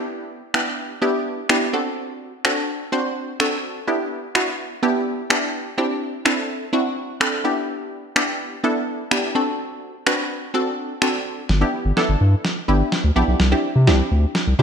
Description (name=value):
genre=dance-pop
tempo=126 BPM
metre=4/4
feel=straight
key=G major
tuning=A4 = 439 Hz
part: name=punchy chord stab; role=accompaniment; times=0.0-14.6 s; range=B3 to C5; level=-22 LUFS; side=equal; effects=chorus
part: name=electronic finger snaps and snare drum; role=drums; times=0.5-14.5 s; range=none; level=-22 LUFS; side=equal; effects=gated reverb
part: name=saturated sub bass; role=bass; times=11.5-14.6 s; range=G1 to C3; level=-16 LUFS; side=equal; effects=none
room=moderate lush hall reverb, RT60 1.6 s, digital ambience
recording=bright 1980s-style digital production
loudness=-19 LUFS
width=side -7 dB against mid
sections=0.0-11.5 A section; 11.5-14.6 B section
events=build-up 11.5-14.6; drum fill 11.5-14.6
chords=0.0 G6; 1.7 D7; 3.9 G6; 5.8 Cadd9; 7.4 G6; 9.4 D7; 11.5 G6; 13.4 Cadd9